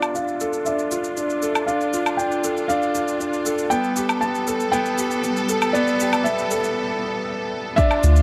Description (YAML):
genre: piano and strings electronica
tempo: 118 BPM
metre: 4/4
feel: straight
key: unclear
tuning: A4 = 442 Hz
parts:
  - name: felt-muted upright piano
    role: melody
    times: 0.0-8.2 s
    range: D5 to A5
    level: -28 LUFS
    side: equal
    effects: low-pass filter, tape echo, shimmer reverb
  - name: clear symphonic string section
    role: sustained chords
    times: 0.0-8.2 s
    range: G3 to A4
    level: -31 LUFS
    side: equal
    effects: sidechain pumping, low-pass filter, shimmer reverb
  - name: warm concert grand piano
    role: riff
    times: 0.0-8.2 s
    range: B3 to A4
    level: -25 LUFS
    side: equal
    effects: tape echo, shimmer reverb
  - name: shaker and woodblock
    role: drums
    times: 0.0-8.2 s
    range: none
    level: -29 LUFS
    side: equal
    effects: none
  - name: electronic kick drum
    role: drums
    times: 7.8-7.9 s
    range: none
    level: -21 LUFS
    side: equal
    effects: overdrive
  - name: warm sub bass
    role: bass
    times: 8.0-8.2 s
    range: D2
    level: -14 LUFS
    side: equal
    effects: sidechain pumping
room: moderate huge ambient reverb, RT60 7.0 s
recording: none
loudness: -22 LUFS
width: mono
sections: 0.0-7.8 A section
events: build-up 0.0-7.8; filter sweep on string section 0.0-7.8; filter sweep on felt piano 0.0-7.8; break 6.8-7.8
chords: 0.0 Dmadd9; 3.7 Gadd9